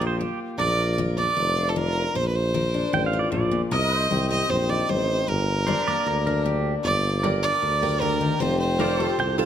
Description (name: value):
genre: honky-tonk and classic country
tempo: 154 BPM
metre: 4/4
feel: straight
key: G minor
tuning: A4 = 440 Hz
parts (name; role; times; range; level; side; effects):
- pedal steel guitar; second line; 0.0-0.4, 2.9-6.7, 9.2-9.5 s; G4 to G5; -28 LUFS; right 5 dB; none
- picked steel-string acoustic guitar; accompaniment; 0.0-9.5 s; G2 to Bb4; -28 LUFS; left 5 dB; none
- pedal steel guitar; sustained chords; 0.0-9.5 s; A4 to Eb5; -33 LUFS; equal; none
- warm tuba; bass; 0.0-9.5 s; F1 to D2; -26 LUFS; equal; none
- clear fiddle; melody; 0.6-9.3 s; A4 to Eb5; -25 LUFS; right 2 dB; none
- tack piano; accompaniment; 7.2-9.5 s; F4 to D5; -29 LUFS; right 7 dB; none
room: light reverb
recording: close, detailed microphones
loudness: -21 LUFS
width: side -9 dB against mid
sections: 0.0-6.8 A section; 6.8-9.5 A section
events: none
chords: 0.0 Ebadd9; 0.6 Bb; 3.7 Cm; 5.3 Gm; 8.4 Fadd9